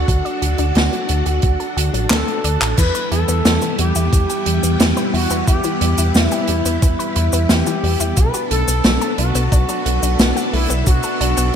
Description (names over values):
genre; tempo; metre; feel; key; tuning
synthwave; 89 BPM; 4/4; straight; unclear; A4 = 440 Hz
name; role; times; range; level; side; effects
expressive synth lead; melody; 0.0-11.6 s; E4 to B4; -23 LUFS; equal; wide subtle chorus, digital delay
string machine, full ensemble; sustained chords; 0.0-11.6 s; G3 to A4; -23 LUFS; equal; ensemble chorus, sidechain pumping
dark detuned saw bass; bass; 0.0-11.5 s; A1 to E2; -19 LUFS; equal; none
analog pluck; arpeggios; 0.1-11.5 s; E3 to D5; -27 LUFS; left 3 dB; chorus, ping-pong delay
electronic kick drum; drums; 0.1-11.0 s; none; -15 LUFS; equal; none
open jazz drum kit; drums; 0.1-11.5 s; cabasa, crash cymbal, handclaps, hi-hat, snare drum; -19 LUFS; right 1 dB; gated reverb
room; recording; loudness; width
light reverb, small room ambience; bright 1980s-style digital production; -14 LUFS; side -8 dB against mid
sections
0.0-2.8 A section; 2.8-11.6 B section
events
drum fill 2.1-2.8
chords
0.0 D; 2.8 Em; 8.2 Bm7